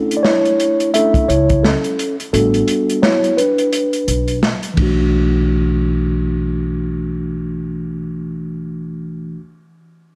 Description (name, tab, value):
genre	hip hop, jazz-hop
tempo	86 BPM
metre	4/4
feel	swing 59% on 16ths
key	B minor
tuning	A4 = 439 Hz
part	mellow tine electric piano	accompaniment	0.0-9.4 s	E3 to E5	-19 LUFS	equal	low-pass filter
part	open jazz drum kit	drums	0.1-5.0 s	hi-hat, kick drum, ride cymbal, snare drum	-22 LUFS	equal	none
part	upright bass	bass	1.3-9.4 s	A1 to C#2	-23 LUFS	equal	none
room	light reverb, small room ambience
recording	none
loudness	-17 LUFS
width	mono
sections	0.0-5.1 A section; 5.1-7.9 B section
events	tine electric piano solo 0.0-5.1; filter sweep on tine electric piano 0.0-5.1; kick muted 2.3-5.1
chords	0.0 Bm11 (rootless); 2.3 A13sus4; 4.8 Bm7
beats	0.24 0.94 1.64 | 2.33 3.03 3.73 4.43 | 5.13 5.82 6.52 7.22